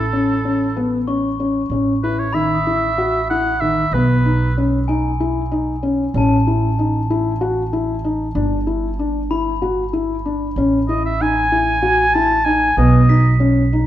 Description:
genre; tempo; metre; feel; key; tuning
contemporary instrumental, chamber music in an uneven meter; 190 BPM (eighths); 7/8; straight; A lydian; A4 = 440 Hz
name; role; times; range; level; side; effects
warm oboe; melody; 0.0-4.6, 10.9-13.4 s; A4 to A5; -18 LUFS; right 1 dB; none
upright bass; bass; 0.0-13.9 s; G1 to B1; -20 LUFS; right 2 dB; none
felt-muted upright piano; arpeggios; 0.1-13.9 s; D#3 to F#4; -19 LUFS; left 2 dB; none
glockenspiel with rubber mallets; texture; 1.1-13.9 s; G#5 to B6; -29 LUFS; left 5 dB; none
room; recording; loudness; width
wet recital hall reverb, RT60 1.2 s; dark, warm production; -15 LUFS; side -12 dB against mid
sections
0.0-1.7 A section; 1.7-13.9 B section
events
none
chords
0.0 A; 3.9 B; 6.1 A5; 8.4 G; 10.6 A5; 12.8 B

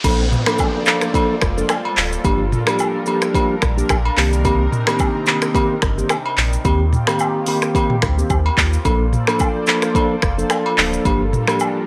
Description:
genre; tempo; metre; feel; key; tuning
afrobeats; 109 BPM; 4/4; swing 55% on 16ths; Bb major; A4 = 441 Hz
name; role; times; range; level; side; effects
mellow tine electric piano; accompaniment; 0.0-11.9 s; Eb3 to A4; -23 LUFS; equal; none
lush unison pad; sustained chords; 0.0-11.9 s; C3 to D5; -29 LUFS; equal; chorus, phaser
sub bass with octave; bass; 0.0-11.4 s; D1 to Eb2; -22 LUFS; equal; none
afro-pop drum kit; drums; 0.0-11.7 s; crash cymbal, finger snaps, handclaps, hi-hat, kick drum, rim click, shaker, toms; -21 LUFS; equal; none
agogo bells and woodblock; percussion; 0.0-11.7 s; none; -26 LUFS; equal; none
riser and downlifter; sound effects; 0.0-4.4 s; none; -32 LUFS; equal; none
room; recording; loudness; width
little or no reverb; dry, gritty hardware recording, cassette tape; -18 LUFS; mono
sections
0.0-11.9 A section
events
none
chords
0.0 Bbmaj7; 2.2 Gm7; 4.2 Cm7; 6.7 Eb6; 8.9 Bbmaj7; 11.1 Gm7

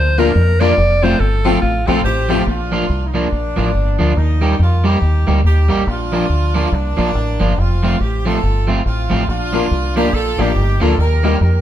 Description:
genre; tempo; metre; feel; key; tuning
ska; 141 BPM; 4/4; swing 61% on 8ths; Bb major; A4 = 440 Hz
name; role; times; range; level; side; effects
edgy alto saxophone; melody; 0.0-2.4 s; F4 to D5; -18 LUFS; equal; none
deep dub fingered electric bass; bass; 0.0-11.6 s; F1 to F2; -16 LUFS; equal; none
electric guitar at the edge of break-up; accompaniment; 0.2-11.4 s; F3 to G4; -20 LUFS; right 1 dB; tape echo
honky-tonk upright piano; stabs; 0.2-2.4, 9.5-11.5 s; A3 to Bb4; -20 LUFS; left 6 dB; none
warm horn section; melody; 2.0-11.6 s; Bb3 to Bb4; -22 LUFS; right 2 dB; none
room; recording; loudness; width
moderate stone room reverb, RT60 1.2 s; band playing live in one room; -13 LUFS; side -11 dB against mid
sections
0.0-2.5 A section; 2.5-11.6 B section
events
alto saxophone solo 0.0-2.5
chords
0.0 Bb; 0.8 F; 2.5 Bb; 4.2 Eb; 5.9 Bb; 7.6 F; 9.3 Bb; 11.0 Eb

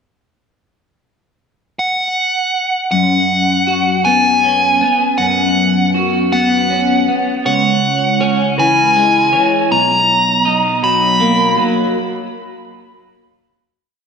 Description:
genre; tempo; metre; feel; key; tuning
post-rock; 53 BPM (dotted quarters); 6/8; straight; unclear; A4 = 440 Hz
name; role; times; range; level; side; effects
smooth overdriven lead guitar; melody; 1.8-11.6 s; F#5 to B5; -14 LUFS; equal; slapback echo, tape echo
electric guitar at the edge of break-up; arpeggios; 2.9-11.9 s; B1 to F#4; -15 LUFS; left 1 dB; phaser, slapback echo, tape echo
twelve-string electric guitar; arpeggios; 7.5-10.1 s; B4 to C#5; -23 LUFS; right 6 dB; lush chorus, slapback echo, tape echo
room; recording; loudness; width
wet lush hall reverb, RT60 2.1 s; big arena sound; -11 LUFS; side -6 dB against mid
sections
0.6-2.9 pickup bar; 2.9-11.9 A section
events
none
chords
0.6 N.C.; 2.9 F#sus4; 7.5 C#m7; 9.7 Bmaj7

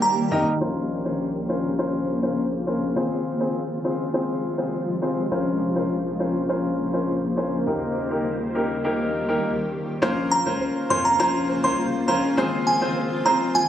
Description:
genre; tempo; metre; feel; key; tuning
dancehall; 102 BPM; 4/4; straight; Bb dorian; A4 = 440 Hz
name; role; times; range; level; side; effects
glassy synth bell; melody; 0.0-0.4, 10.3-13.7 s; Ab5 to C6; -22 LUFS; right 2 dB; chorus, phaser
granular cloud pad; sustained chords; 0.0-13.7 s; C3 to C5; -28 LUFS; equal; built-in reverb
nylon-string guitar; arpeggios; 0.0-1.2, 10.0-13.7 s; Eb3 to C5; -29 LUFS; left 1 dB; none
clear grand piano; accompaniment; 0.3-13.5 s; Bb3 to Eb5; -24 LUFS; left 1 dB; none
punchy sub bass; bass; 0.3-13.7 s; Ab1 to F2; -31 LUFS; left 1 dB; none
room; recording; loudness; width
moderate lush hall reverb, RT60 2.7 s; recorded on a phone in the room, club reverb, low-pass filter; -21 LUFS; side -10 dB against mid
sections
0.6-10.0 A section; 10.0-13.7 B section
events
filter sweep 0.6-10.0; stop 9.4-10.0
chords
0.0 Eb; 0.6 Bbmadd9; 3.0 Fm/Ab; 5.3 Bbmadd9; 7.7 Eb; 10.0 Bbmadd9; 12.4 Fm/Ab

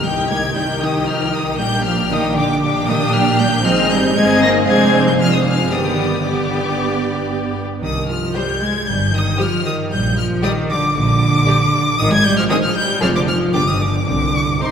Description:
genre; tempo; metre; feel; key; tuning
quick classical-period movement for symphony orchestra; 116 BPM; 4/4; straight; C minor; A4 = 441 Hz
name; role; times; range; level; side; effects
rich chamber violin section; melody; 0.0-14.7 s; C6 to Bb6; -20 LUFS; left 2 dB; none
warm chamber violin section; second line; 0.0-14.7 s; Eb4 to G5; -24 LUFS; left 4 dB; none
warm studio viola section; accompaniment; 0.0-14.7 s; Eb3 to G4; -22 LUFS; right 2 dB; none
dark chamber cello section; bass; 0.0-14.7 s; C3 to Bb3; -20 LUFS; right 1 dB; none
warm studio double bass section; bass; 0.0-14.5 s; F1 to C2; -21 LUFS; right 2 dB; none
timpani; percussion; 14.1-14.7 s; C3; -30 LUFS; equal; none
room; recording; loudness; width
wet church reverb, RT60 3.5 s; recorded in a church or concert hall; -14 LUFS; side -7 dB against mid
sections
0.0-14.7 A section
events
none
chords
0.0 Cm; 1.6 Gm/Bb; 3.6 Ab; 4.7 Dm7b5/F; 5.7 G; 7.8 Cm; 9.9 Gm/Bb; 12.0 Ab5; 13.0 Dm7/F; 13.5 G; 14.1 Cm

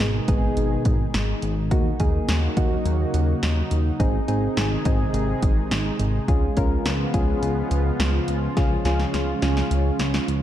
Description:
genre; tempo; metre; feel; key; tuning
synth-pop; 105 BPM; 4/4; straight; unclear; A4 = 440 Hz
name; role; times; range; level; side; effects
soft electric-piano-like synth keys; accompaniment; 0.0-10.1 s; Bb3 to Bb4; -28 LUFS; equal; chorus, shimmer reverb
lush unison pad; sustained chords; 0.0-10.4 s; Cb3 to Ab4; -27 LUFS; equal; chorus, shimmer reverb
chorused synth bass; bass; 0.0-10.4 s; Ab1 to Eb2; -24 LUFS; equal; none
punchy analog drum machine; drums; 0.0-10.4 s; hi-hat, kick drum, snare drum; -24 LUFS; equal; none
room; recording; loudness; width
light reverb; dark, warm production; -20 LUFS; side -12 dB against mid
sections
0.0-10.4 A section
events
drum fill 8.6-10.4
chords
0.0 Abm; 1.7 Ebm7; 4.0 Ab; 6.3 Db7

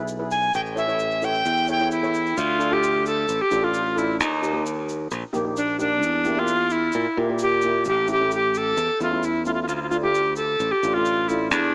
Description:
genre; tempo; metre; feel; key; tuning
calypso; 131 BPM; 4/4; straight; D minor; A4 = 439 Hz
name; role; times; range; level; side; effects
steel pan; accompaniment; 0.0-11.5 s; A3 to E5; -32 LUFS; equal; none
modern bright fingered electric bass; bass; 0.0-11.7 s; A1 to Bb2; -30 LUFS; equal; none
tube shaker; percussion; 0.1-11.6 s; none; -45 LUFS; equal; none
bright reedy tenor recorder; melody; 0.3-11.7 s; D4 to G#5; -24 LUFS; equal; none
room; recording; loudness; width
moderate plate reverb, RT60 3.0 s; small speaker sound; -23 LUFS; mono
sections
0.0-2.4 A section; 2.4-11.7 B section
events
recorder solo 0.0-2.4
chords
0.0 E; 0.5 A7; 2.4 Dm; 4.2 Eb; 6.0 Edim; 7.9 A; 9.7 Dm

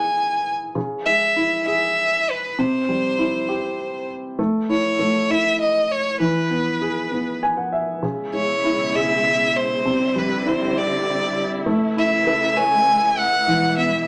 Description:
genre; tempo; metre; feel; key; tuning
six-eight pop ballad; 66 BPM (dotted quarters); 6/8; straight; E major; A4 = 439 Hz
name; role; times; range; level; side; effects
clear violin; melody; 0.0-14.1 s; B4 to G#5; -22 LUFS; equal; none
warm upright piano; accompaniment; 0.0-14.1 s; C3 to G#5; -25 LUFS; equal; none
warm studio string section; sustained chords; 8.0-14.1 s; B2 to E4; -29 LUFS; equal; none
room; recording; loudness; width
wet studio reverb, RT60 0.6 s; none; -20 LUFS; mono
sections
0.0-14.1 A section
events
upright piano fill 7.1-8.0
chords
0.0 E; 0.8 C#m; 2.6 C; 4.4 A; 6.2 E; 8.0 C#m7; 9.9 Cadd9; 11.7 A; 13.5 E

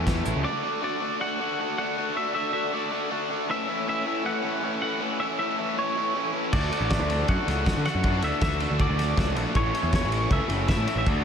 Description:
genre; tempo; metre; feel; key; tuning
indie rock; 158 BPM; 4/4; straight; D major; A4 = 441 Hz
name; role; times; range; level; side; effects
twangy electric guitar; melody; 0.0-11.2 s; C#5 to A5; -29 LUFS; equal; ping-pong delay
raw garage guitar; riff; 0.0-11.2 s; A2 to F#4; -28 LUFS; left 1 dB; overdrive
fuzz picked electric bass; bass; 0.0-0.4, 6.5-11.2 s; F#1 to D3; -27 LUFS; equal; overdrive
cloth-damped thuddy drum kit; drums; 0.1-0.3, 6.5-11.2 s; crash cymbal, hi-hat, kick drum, ride cymbal, snare drum; -27 LUFS; equal; none
room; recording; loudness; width
moderate lush hall reverb, RT60 1.9 s, small room ambience; dreamy mix soaked in reverb; -23 LUFS; side -7 dB against mid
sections
0.5-11.2 A section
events
none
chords
0.5 D; 3.5 A; 6.5 D; 9.6 A

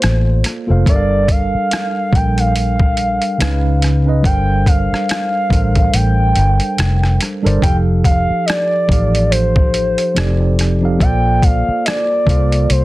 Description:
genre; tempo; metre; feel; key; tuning
R&B, neo-soul; 71 BPM; 4/4; swing 57% on 16ths; G minor; A4 = 441 Hz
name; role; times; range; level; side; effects
gliding portamento lead; melody; 0.0-12.8 s; C5 to G5; -18 LUFS; equal; chorus
mellow tine electric piano; accompaniment; 0.0-12.8 s; C#3 to G5; -20 LUFS; right 1 dB; medium stereo tremolo
vintage muted fingered electric bass; bass; 0.0-12.8 s; F1 to C#2; -15 LUFS; equal; none
boom bap sampler-style drum kit; drums; 0.0-12.8 s; hi-hat, kick drum, rim click; -16 LUFS; equal; soft clipping on snare
room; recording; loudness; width
little or no reverb; dense, heavily limited modern master; -12 LUFS; side -18 dB against mid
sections
0.0-7.6 A section; 7.6-12.8 A section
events
kick muted 5.9-7.6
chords
0.0 Bbmaj9; 0.9 Gm9; 3.4 C#9; 4.2 Gm11; 7.6 F9; 10.2 F13; 11.0 Bbmaj9

